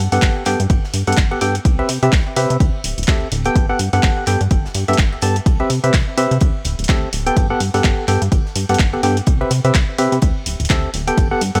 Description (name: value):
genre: piano house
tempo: 126 BPM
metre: 4/4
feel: swing 58% on 16ths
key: G major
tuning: A4 = 440 Hz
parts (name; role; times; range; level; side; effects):
- plucky analog bass; bass; 0.0-11.6 s; D1 to C3; -22 LUFS; equal; tube saturation, sidechain pumping
- percussive organ stab; riff; 0.1-11.6 s; B3 to A5; -22 LUFS; equal; chorus, sidechain pumping, tape echo
- punchy analog drum machine; drums; 0.1-11.6 s; handclaps, hi-hat; -26 LUFS; equal; none
- unplugged drum kit; drums; 0.1-11.6 s; ride cymbal, snare drum; -38 LUFS; equal; none
- electronic kick drum; drums; 0.2-11.3 s; none; -18 LUFS; equal; overdrive
room: studio ambience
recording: echo-heavy mix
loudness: -17 LUFS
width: mono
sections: 0.0-11.6 A section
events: none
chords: 0.0 Gmaj9; 1.7 Cmaj7; 2.6 D7sus4; 3.6 Gmaj9; 5.5 Cmaj7; 6.4 D7sus4; 7.4 Gmaj9; 9.3 Cmaj7; 10.2 D7sus4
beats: 0.22 0.70 1.18 | 1.65 2.13 2.60 3.08 | 3.56 4.03 4.51 4.99 | 5.46 5.94 6.41 6.89 | 7.37 7.84 8.32 8.79 | 9.27 9.75 10.22 10.70 | 11.18